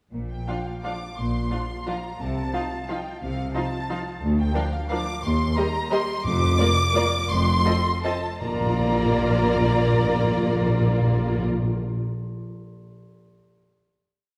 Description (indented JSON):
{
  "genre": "classical, orchestral ballroom waltz",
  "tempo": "150-192 BPM",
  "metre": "3/4",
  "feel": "rubato",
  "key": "Bb major",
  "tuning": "A4 = 443 Hz",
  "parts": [
    { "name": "rich studio cello section", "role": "bass", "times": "0.1-11.4 s", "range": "D2 to C3", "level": "-31 LUFS", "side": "equal", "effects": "none" },
    { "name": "warm studio double bass section", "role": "bass", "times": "0.1-11.4 s", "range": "F1 to Eb2", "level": "-30 LUFS", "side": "equal", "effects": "none" },
    { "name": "dark studio violin section", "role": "melody", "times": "0.3-11.4 s", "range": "F5 to D6", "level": "-31 LUFS", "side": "equal", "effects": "none" },
    { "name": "warm studio violin section", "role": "second line", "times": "0.5-11.4 s", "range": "F4 to F5", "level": "-32 LUFS", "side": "equal", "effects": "none" },
    { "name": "clear studio viola section", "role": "accompaniment", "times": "0.5-11.4 s", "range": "F3 to G4", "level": "-32 LUFS", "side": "equal", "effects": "none" },
    { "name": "timpani", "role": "percussion", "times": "6.2-11.7 s", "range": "F2 to Bb2", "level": "-27 LUFS", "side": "equal", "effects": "none" }
  ],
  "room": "wet scoring stage reverb, RT60 1.9 s",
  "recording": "heard from further back in the room",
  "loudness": "-24 LUFS",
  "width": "mono",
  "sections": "0.1-8.4 A section; 8.4-10.7 final chord",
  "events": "slowing down 5.7-8.4",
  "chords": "0.1 Bb; 2.2 F7/C; 4.2 Bb/D (rootless); 5.2 Cm7/Eb; 6.3 Bb/F; 7.3 F; 8.4 Bb"
}